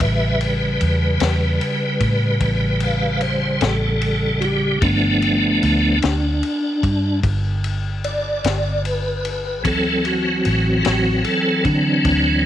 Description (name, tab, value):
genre	slow blues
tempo	50 BPM (dotted quarters)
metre	12/8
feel	straight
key	unclear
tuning	A4 = 440 Hz
part	tonewheel organ	sustained chords	0.0-12.5 s	C#3 to F5	-18 LUFS	equal	slow rotary speaker, overdrive, chorus vibrato
part	vintage muted fingered electric bass	bass	0.0-12.5 s	G1 to D3	-21 LUFS	equal	none
part	vintage drum kit	drums	0.0-12.2 s	kick drum, ride cymbal, snare drum	-27 LUFS	left 4 dB	none
room	light reverb, small room ambience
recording	1960s-style stereo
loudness	-16 LUFS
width	side -11 dB against mid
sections	0.0-12.5 A section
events	tonewheel organ solo 0.0-12.5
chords	0.0 A9; 4.8 G9; 9.6 D9